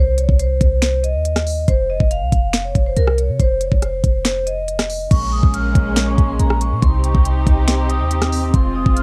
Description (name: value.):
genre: hip hop, trap.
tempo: 140 BPM.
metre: 4/4.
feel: half-time.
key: F minor.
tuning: A4 = 440 Hz.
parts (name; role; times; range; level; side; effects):
vibraphone with hard mallets; melody; 0.0-9.0 s; Bb4 to F6; -25 LUFS; equal; low-pass filter, cassette tape.
clean 808-style bass; bass; 0.0-9.0 s; F1 to C3; -21 LUFS; equal; none.
trap drum kit; drums; 0.2-9.0 s; crash cymbal, finger snaps, hi-hat, kick drum, rim click, snare drum; -20 LUFS; equal; none.
muted studio string section; sustained chords; 5.1-9.0 s; C3 to G4; -25 LUFS; equal; cassette tape.
room: little or no reverb.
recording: home recording on cassette.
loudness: -17 LUFS.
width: mono.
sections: 0.0-5.1 A section; 5.1-9.0 B section.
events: none.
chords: 0.0 Cm; 1.7 F5; 5.1 Bbm7; 6.8 Cm.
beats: 0.40 0.82 1.25 | 1.68 2.11 2.54 2.97 | 3.40 3.82 4.25 4.68 | 5.11 5.54 5.97 6.39 | 6.82 7.25 7.68 8.11 | 8.54 8.97.